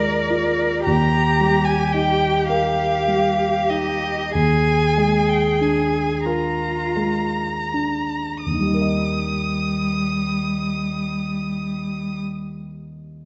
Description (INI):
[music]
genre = classical, slow romantic movement for piano trio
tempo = 25-38 BPM (dotted quarters)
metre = 6/8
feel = rubato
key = Eb major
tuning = A4 = 440 Hz
[part]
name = rich violin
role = melody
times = 0.0-12.2 s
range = D5 to Eb6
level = -26 LUFS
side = equal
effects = none
[part]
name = rich cello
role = second line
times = 0.0-12.2 s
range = G3 to Bb4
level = -26 LUFS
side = equal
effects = none
[part]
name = dark concert grand piano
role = accompaniment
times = 0.0-13.3 s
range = Eb2 to Eb5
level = -25 LUFS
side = equal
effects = none
[sound]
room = wet recital hall reverb, RT60 1.7 s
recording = nothing above 7.8 kHz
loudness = -21 LUFS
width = mono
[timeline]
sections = 0.0-8.5 A section; 8.5-12.3 B section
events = slowing down 0.0-8.5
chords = 0.0 Bb7/Eb; 0.9 Eb; 4.3 Bb7/Eb; 8.5 Eb